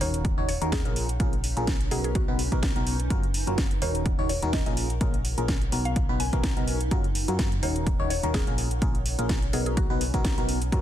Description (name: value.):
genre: piano house.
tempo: 126 BPM.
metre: 4/4.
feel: swing 55% on 16ths.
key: unclear.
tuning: A4 = 444 Hz.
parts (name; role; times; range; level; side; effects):
mallet-like synth pluck; melody; 0.0-10.4 s; F#4 to G#5; -36 LUFS; left 1 dB; chorus, phaser, cassette tape, ping-pong delay.
barking FM electric piano; riff; 0.0-10.8 s; A#2 to C#5; -31 LUFS; left 1 dB; phaser, sidechain pumping, ping-pong delay.
solid FM bass; bass; 0.0-10.8 s; D#1 to F#2; -29 LUFS; equal; sidechain pumping.
house drum kit; drums; 0.0-10.8 s; hi-hat, snare drum; -33 LUFS; equal; overdrive.
impact; sound effects; 0.0-1.2 s; none; barely audible; none; none.
granular cloud pad; texture; 0.0-10.8 s; C#4 to G#5; -38 LUFS; right 1 dB; built-in reverb, sidechain pumping.
electronic kick drum; drums; 0.2-10.8 s; none; -27 LUFS; equal; overdrive.
room: little or no reverb.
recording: dense, heavily limited modern master.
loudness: -23 LUFS.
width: side -11 dB against mid.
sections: 0.0-10.8 A section.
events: impact 0.0-1.2.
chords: 0.2 D#m7; 1.0 A#m7; 2.2 Bmaj7; 3.1 F#maj7; 4.1 D#m7; 4.8 A#m7; 6.0 Bmaj7; 6.9 F#maj7; 7.9 D#m7; 8.6 A#m7; 9.8 Bmaj7.